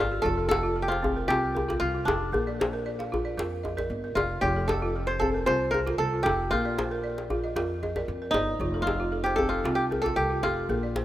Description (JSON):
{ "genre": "west african traditional, West African string and xylophone music", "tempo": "115 BPM", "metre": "4/4", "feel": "straight", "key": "F mixolydian", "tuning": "A4 = 441 Hz", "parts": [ { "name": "kora", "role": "melody", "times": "0.0-11.0 s", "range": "D4 to C5", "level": "-27 LUFS", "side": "equal", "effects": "none" }, { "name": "balafon", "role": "arpeggios", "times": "0.0-11.0 s", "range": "F3 to F5", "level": "-31 LUFS", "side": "right 1 dB", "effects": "tape echo" }, { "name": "upright bass", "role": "bass", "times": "0.0-11.0 s", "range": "F1 to F2", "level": "-33 LUFS", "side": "equal", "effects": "none" }, { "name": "djembe", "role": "percussion", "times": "0.0-11.0 s", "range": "none", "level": "-31 LUFS", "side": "left 1 dB", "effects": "none" } ], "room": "moderate lush hall reverb, RT60 2.9 s", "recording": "rough home demo mix", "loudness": "-25 LUFS", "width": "side -13 dB against mid", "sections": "0.0-11.0 A section", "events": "balafon fill 0.0", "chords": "0.3 F; 2.3 Bb; 4.4 F; 6.5 Bb; 8.6 F" }